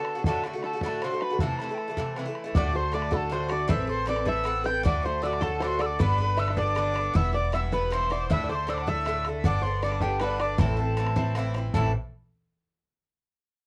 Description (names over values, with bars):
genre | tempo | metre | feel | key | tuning
celtic folk, Celtic jig | 104 BPM (dotted quarters) | 6/8 | straight | A dorian | A4 = 440 Hz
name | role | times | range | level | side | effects
mellow mid whistle | melody | 0.0-11.9 s | G5 to G6 | -33 LUFS | equal | none
accordion | second line | 0.0-11.9 s | G4 to G5 | -37 LUFS | equal | none
bluegrass banjo | second line | 0.0-11.9 s | G4 to G5 | -37 LUFS | equal | none
Irish bouzouki | accompaniment | 0.0-11.9 s | G2 to B4 | -34 LUFS | equal | none
bodhran | percussion | 0.0-11.9 s | none | -31 LUFS | equal | none
upright bass | bass | 2.6-11.9 s | E1 to D2 | -32 LUFS | equal | none
room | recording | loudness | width
light reverb | worn, warbling old tape, cassette tape, warbly pitch drift | -27 LUFS | mono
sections
0.0-2.5 A section; 2.5-11.7 B section; 11.7-12.9 C section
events
none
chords
0.2 D; 1.4 Am; 2.5 D; 3.7 Amadd9; 4.8 D; 6.0 G; 7.1 Em; 8.3 Dsus2; 9.4 G; 10.6 Am